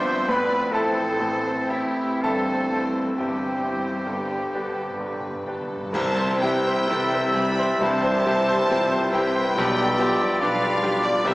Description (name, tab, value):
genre	classical, romantic movement for piano and orchestra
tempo	54-72 BPM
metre	4/4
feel	rubato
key	C major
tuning	A4 = 439 Hz
part	bright grand piano	melody	0.0-11.3 s	G1 to E6	-26 LUFS	left 1 dB	none
part	rich studio violin section	melody	0.0-11.3 s	C4 to B5	-32 LUFS	equal	none
part	clear oboe	second line	0.0-11.3 s	E4 to E5	-31 LUFS	equal	none
part	small flute group	second line	0.0-11.3 s	F4 to C6	-30 LUFS	equal	none
part	warm clarinet	second line	0.0-11.3 s	B3 to A4	-33 LUFS	left 1 dB	none
part	warm symphonic violin section	second line	0.0-11.3 s	C4 to E5	-36 LUFS	left 1 dB	none
part	dark bassoon	accompaniment	0.0-11.3 s	D3 to E4	-33 LUFS	equal	none
part	warm symphonic viola section	accompaniment	0.0-11.3 s	E3 to C5	-34 LUFS	equal	none
part	mellow French horn section	sustained chords	0.0-11.3 s	E3 to G4	-34 LUFS	left 1 dB	none
part	warm trombone section	sustained chords	0.0-11.3 s	D3 to C4	-31 LUFS	right 1 dB	none
part	warm trumpet	stabs	0.0-11.3 s	E4 to E5	-29 LUFS	equal	none
part	warm symphonic cello section	bass	0.0-11.3 s	G2 to C3	-34 LUFS	right 1 dB	none
part	warm symphonic double bass section	bass	0.0-11.3 s	G1 to C2	-41 LUFS	right 1 dB	none
part	timpani	percussion	2.2-11.3 s	G2 to C3	-39 LUFS	equal	none
part	dark tuba	bass	5.9-11.3 s	B1 to C2	-32 LUFS	right 1 dB	none
part	clash cymbals and concert bass drum	percussion	5.9-7.8 s	none	-41 LUFS	equal	none
room	wet concert hall reverb, RT60 2.1 s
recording	small speaker sound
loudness	-20 LUFS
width	side -19 dB against mid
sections	0.0-5.9 A section; 5.9-11.3 B section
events	timpani fill 4.1-5.9; band accent 5.9-6.9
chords	0.3 Am; 2.2 C/G; 4.1 G; 5.9 C; 9.6 G7/B